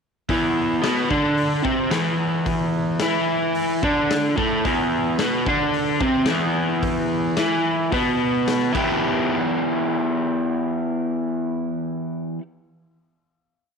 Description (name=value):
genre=garage rock duo or trio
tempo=110 BPM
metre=4/4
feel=straight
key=E minor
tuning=A4 = 440 Hz
part: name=crunchy overdriven guitar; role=riff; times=0.3-12.4 s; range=E2 to G4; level=-20 LUFS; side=equal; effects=none
part: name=raw garage drum kit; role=drums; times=0.3-8.9 s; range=crash cymbal, hi-hat, kick drum, snare drum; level=-28 LUFS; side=left 3 dB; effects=none
room=light reverb, studio ambience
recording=1960s-style stereo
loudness=-19 LUFS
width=side -5 dB against mid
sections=0.3-9.0 riff; 9.0-11.2 final hit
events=none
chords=0.3 E5; 8.7 Em